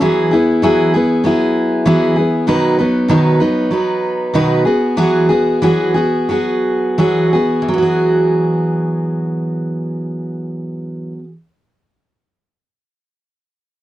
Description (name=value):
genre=pop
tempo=83-98 BPM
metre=4/4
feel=swing 55% on 16ths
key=E major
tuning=A4 = 440 Hz
part: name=picked steel-string acoustic guitar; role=solo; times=0.0-11.3 s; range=B2 to B4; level=-13 LUFS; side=equal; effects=none
room=light reverb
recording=dry, close 1970s-style studio recording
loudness=-13 LUFS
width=side -14 dB against mid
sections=0.0-7.7 A section; 7.7-10.6 B section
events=slowing down 2.5-7.7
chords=0.0 Eadd9; 2.5 B; 4.6 Eadd9